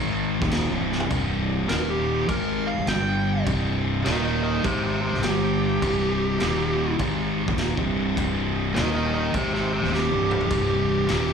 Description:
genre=stoner and doom metal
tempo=102 BPM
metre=4/4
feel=swing 65% on 8ths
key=C minor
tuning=A4 = 440 Hz
part: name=thick fuzz guitar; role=riff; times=0.0-11.3 s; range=C2 to Ab3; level=-27 LUFS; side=left 12 dB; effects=distortion
part: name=thick fuzz guitar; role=riff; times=0.0-11.3 s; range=C2 to Ab3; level=-27 LUFS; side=right 10 dB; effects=distortion, slapback echo
part: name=fuzz fingered electric bass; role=bass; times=0.0-11.3 s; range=C1 to Ab1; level=-30 LUFS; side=equal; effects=overdrive
part: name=raw garage drum kit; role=drums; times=0.4-11.3 s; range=crash cymbal, kick drum, snare drum, toms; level=-30 LUFS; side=equal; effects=none
part: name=fuzz lead guitar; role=melody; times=1.7-11.3 s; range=G4 to G5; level=-27 LUFS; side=right 1 dB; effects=distortion, slapback echo, digital delay
room=studio reverb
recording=live gig heard through the venue's PA, club reverb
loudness=-21 LUFS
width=side -6 dB against mid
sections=0.0-1.1 A section; 1.1-11.3 B section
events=drum fill 0.8, 9.9-10.5; lead electric guitar solo 1.1-11.3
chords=0.0 Cm; 1.1 C5; 1.7 Eb5; 2.3 Cm; 2.9 G5; 3.5 C5; 4.1 Eb5; 4.7 Cm; 5.2 G5; 5.8 C5; 6.4 Eb5; 7.0 Cm; 8.8 Eb5; 9.3 Cm

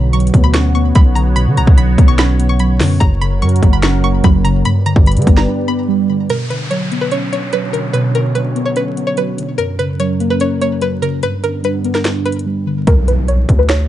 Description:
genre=hip hop, trap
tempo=146 BPM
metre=4/4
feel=half-time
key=B harmonic minor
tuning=A4 = 441 Hz
part: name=string-like resonator pluck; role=melody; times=0.0-13.9 s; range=A#4 to C#6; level=-20 LUFS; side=equal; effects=chorus, low-pass filter, ping-pong delay
part: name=muted felt-like synth keys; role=accompaniment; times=0.0-12.9 s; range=F#2 to D4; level=-17 LUFS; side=equal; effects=chorus, phaser, low-pass filter
part: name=sweeping resonant pad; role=sustained chords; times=0.0-12.9 s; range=F#2 to D5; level=-24 LUFS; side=right 1 dB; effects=wide subtle chorus
part: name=hard-hitting 808-style bass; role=bass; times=0.0-5.5, 12.9-13.9 s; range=F#1 to D3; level=-13 LUFS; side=equal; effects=none
part: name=trap drum kit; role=drums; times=0.1-13.8 s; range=finger snaps, hi-hat, kick drum, snare drum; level=-12 LUFS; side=equal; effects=none
part: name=downlifter and impact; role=sound effects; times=6.3-9.6, 13.0-13.9 s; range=none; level=-26 LUFS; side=equal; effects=none
room=digital ambience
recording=dark, warm production, vinyl crackle, nothing above 10.6 kHz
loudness=-11 LUFS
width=side -13 dB against mid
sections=0.0-6.3 A section; 6.3-12.9 B section; 12.9-13.9 C section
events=break 5.5-6.3; impact 12.9-13.9; filter sweep 12.9-13.9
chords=0.0 Bmadd9; 3.0 F#; 4.7 G; 6.3 Bmadd9; 9.6 F#; 11.2 G; 12.9 Bm

